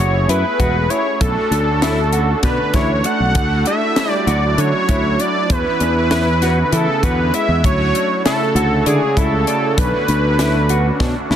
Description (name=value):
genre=progressive instrumental, band music in an uneven meter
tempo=196 BPM (eighths)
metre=7/8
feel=straight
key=B dorian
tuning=A4 = 440 Hz
part: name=wide unison lead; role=melody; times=0.0-11.3 s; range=G#4 to F#5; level=-19 LUFS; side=equal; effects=none
part: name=brassy analog pad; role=accompaniment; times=0.0-11.4 s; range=A3 to C#5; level=-25 LUFS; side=right 2 dB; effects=chorus
part: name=mellow electric guitar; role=arpeggios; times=0.0-11.4 s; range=D4 to D5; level=-24 LUFS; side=left 3 dB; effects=spring reverb
part: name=picked electric bass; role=bass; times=0.0-11.4 s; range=E1 to E3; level=-18 LUFS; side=equal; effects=none
part: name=tight funk drum kit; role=drums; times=0.3-11.4 s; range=hi-hat, kick drum, snare drum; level=-20 LUFS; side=equal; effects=none
part: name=warm alto saxophone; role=second line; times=2.4-11.3 s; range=C#3 to A3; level=-24 LUFS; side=right 3 dB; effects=none
room=light reverb, studio ambience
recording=dense, heavily limited modern master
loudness=-14 LUFS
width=side -10 dB against mid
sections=0.0-11.4 A section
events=drum fill 11.0-11.4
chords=0.0 F#m7; 1.2 Bm7; 3.4 Dmaj7; 5.5 C#m7/E; 7.6 Dmaj7; 9.8 Bm7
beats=0.29 0.60 0.91 | 1.21 1.52 1.83 2.13 2.44 2.75 3.05 | 3.36 3.67 3.97 4.28 4.58 4.89 5.20 | 5.50 5.81 6.11 6.42 6.72 7.03 7.34 | 7.64 7.95 8.25 8.56 8.86 9.17 9.47 | 9.78 10.09 10.39 10.70 11.00 11.31